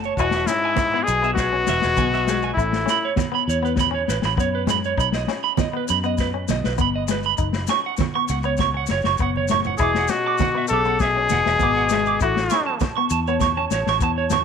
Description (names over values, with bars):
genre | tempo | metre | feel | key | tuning
highlife guitar band | 100 BPM | 4/4 | straight | E major | A4 = 440 Hz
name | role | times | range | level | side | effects
clean electric guitar | accompaniment | 0.0-14.4 s | G#3 to E4 | -28 LUFS | left 12 dB | none
fingered electric bass | bass | 0.0-14.4 s | E1 to F#2 | -26 LUFS | equal | none
maracas | percussion | 0.0-14.4 s | none | -35 LUFS | left 15 dB | none
electric guitar at the edge of break-up | arpeggios | 0.1-14.4 s | G#4 to D6 | -24 LUFS | right 10 dB | slapback echo
bright trumpet | melody | 0.2-3.1, 9.8-12.8 s | E4 to A4 | -21 LUFS | left 2 dB | none
warm tenor saxophone | second line | 0.2-3.1, 9.8-12.8 s | G#2 to C#3 | -29 LUFS | left 11 dB | none
vintage drum kit | drums | 0.2-14.4 s | kick drum, snare drum | -26 LUFS | left 4 dB | none
congas | percussion | 0.2-14.4 s | none | -28 LUFS | right 10 dB | none
room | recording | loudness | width
wet spring reverb, RT60 1.4 s, small room ambience | 1960s-style stereo with parts hard left and right | -18 LUFS | side -7 dB against mid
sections
0.2-14.4 A section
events
drum fill 9.4-9.8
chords
0.2 Eadd9; 2.6 Aadd9; 5.0 B; 7.4 F#5; 9.8 Eadd9; 12.2 Aadd9